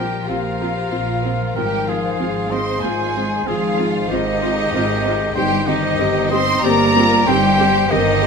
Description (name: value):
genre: cinematic, emotional film score for orchestra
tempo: 94 BPM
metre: 3/4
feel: rubato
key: unclear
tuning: A4 = 440 Hz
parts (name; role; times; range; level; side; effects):
- warm symphonic violin section; melody; 0.0-8.3 s; Eb5 to C6; -24 LUFS; left 2 dB; none
- bright symphonic violin section; second line; 0.0-8.3 s; Eb4 to C5; -25 LUFS; left 2 dB; none
- concert flute; second line; 0.0-8.3 s; Eb5 to C6; -24 LUFS; left 1 dB; none
- warm oboe; second line; 0.0-8.3 s; G4 to Eb5; -26 LUFS; right 2 dB; none
- warm symphonic viola section; accompaniment; 0.0-8.3 s; C4 to G4; -25 LUFS; right 2 dB; none
- mellow French horn section; sustained chords; 0.0-8.3 s; Ab3 to C5; -25 LUFS; left 3 dB; none
- concert harp; arpeggios; 0.0-8.3 s; G2 to C6; -26 LUFS; left 12 dB; none
- rich symphonic cello section; bass; 0.0-8.3 s; Eb3 to C4; -24 LUFS; right 4 dB; none
- rich symphonic double bass section; bass; 0.0-8.3 s; G1 to Bb1; -25 LUFS; right 5 dB; none
room: moderate recital hall reverb, RT60 1.5 s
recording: close, detailed microphones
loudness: -15 LUFS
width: side -5 dB against mid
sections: 0.0-8.3 A section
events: none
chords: 0.0 Bbsus2; 1.6 Fm/Ab; 5.4 Cm/G